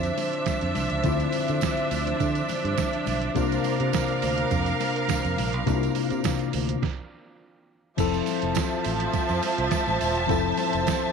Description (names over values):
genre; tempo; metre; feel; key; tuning
disco; 104 BPM; 4/4; straight; F major; A4 = 442 Hz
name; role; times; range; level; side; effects
tine electric piano; accompaniment; 0.0-11.1 s; C3 to A4; -28 LUFS; left 9 dB; overdrive, fast stereo tremolo
rich studio string section; sustained chords; 0.0-11.1 s; F3 to A5; -26 LUFS; right 2 dB; none
fingered electric bass; bass; 0.0-10.8 s; Eb1 to D3; -29 LUFS; right 2 dB; none
lo-fi sampler-style drum kit; drums; 0.0-11.0 s; crash cymbal, hi-hat, kick drum, snare drum; -30 LUFS; right 7 dB; none
tambourine; percussion; 0.1-11.0 s; none; -42 LUFS; right 20 dB; none
congas; percussion; 0.2-11.0 s; none; -39 LUFS; left 11 dB; none
room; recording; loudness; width
moderate spring reverb, RT60 2.5 s; 1960s-style stereo with parts hard left and right; -23 LUFS; side -6 dB against mid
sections
0.0-8.0 A section; 8.0-11.1 B section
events
stop 6.8-8.0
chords
0.0 Dm9; 3.4 C9sus4; 8.0 Fmaj7